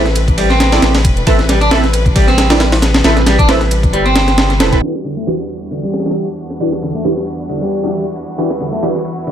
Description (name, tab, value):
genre	breakbeat, breaks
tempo	135 BPM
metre	4/4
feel	swing 55% on 16ths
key	E minor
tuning	A4 = 440 Hz
part	clear symphonic string section	sustained chords	0.0-9.3 s	E2 to B4	-23 LUFS	left 1 dB	sidechain pumping, low-pass filter
part	orchestra-hit-like synth stab	stabs	0.0-8.9 s	E3 to E5	-19 LUFS	right 3 dB	built-in reverb, phaser, tape echo
part	saturated sub bass	bass	0.0-4.8 s	E1 to A1	-15 LUFS	equal	none
part	breakbeat sampler-style drum kit	drums	0.1-9.3 s	hi-hat, kick drum, ride cymbal, snare drum	-15 LUFS	equal	high-pass filter on snare, small room reverb, high-pass filter on cymbals, high-pass filter on kick, high-pass filter on hats
part	electronic hi-hat	drums	0.1-4.8 s	none	-26 LUFS	equal	low-pass filter on hats, small room reverb
part	clean electric guitar	riff	0.4-9.3 s	D3 to D4	-18 LUFS	equal	overdrive, vintage 12-bit sampler grit, low-pass filter, tape echo
room	light reverb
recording	low-pass filter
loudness	-11 LUFS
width	side -10 dB against mid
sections	0.0-4.8 A section; 4.8-9.3 B section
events	filter sweep 4.8-9.3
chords	0.0 Amadd9; 4.8 Em7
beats	0.38 0.82 | 1.27 1.71 2.16 2.60 | 3.05 3.49 3.94 4.38 | 4.82 5.27 5.71 6.16 | 6.60 7.05 7.49 7.93 | 8.38 8.82 9.27